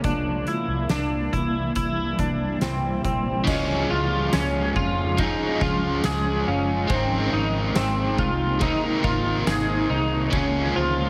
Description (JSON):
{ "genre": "dream pop", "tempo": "70 BPM", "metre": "4/4", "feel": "straight", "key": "Db major", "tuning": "A4 = 444 Hz", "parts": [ { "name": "granular cloud pad", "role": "sustained chords", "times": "0.0-11.1 s", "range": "C3 to E4", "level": "-31 LUFS", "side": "equal", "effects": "built-in reverb, shimmer reverb" }, { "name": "electric guitar at the edge of break-up", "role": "arpeggios", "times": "0.0-11.1 s", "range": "C4 to Ab4", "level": "-28 LUFS", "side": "equal", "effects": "analog chorus, delay, shimmer reverb" }, { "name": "vintage muted fingered electric bass", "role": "bass", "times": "0.0-11.1 s", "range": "Gb1 to F2", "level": "-30 LUFS", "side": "equal", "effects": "none" }, { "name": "oversized low-tuned drum kit", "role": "drums", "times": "0.0-10.5 s", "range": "crash cymbal, hi-hat, kick drum, ride cymbal, snare drum, tambourine", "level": "-31 LUFS", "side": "equal", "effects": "none" }, { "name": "overdriven electric guitar", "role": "accompaniment", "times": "3.4-11.1 s", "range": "Db3 to Bb4", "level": "-29 LUFS", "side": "equal", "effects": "tremolo, subtle chorus, shimmer reverb" }, { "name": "worn celesta", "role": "texture", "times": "3.5-11.1 s", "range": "C5 to F5", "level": "-39 LUFS", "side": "equal", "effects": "delay, shimmer reverb" } ], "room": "light reverb, small room ambience", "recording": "heavily compressed radio sound", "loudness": "-23 LUFS", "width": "mono", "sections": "0.0-3.5 A section; 3.5-11.1 B section", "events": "none", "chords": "0.0 C7; 3.5 Db; 6.9 Abadd9; 10.3 Db" }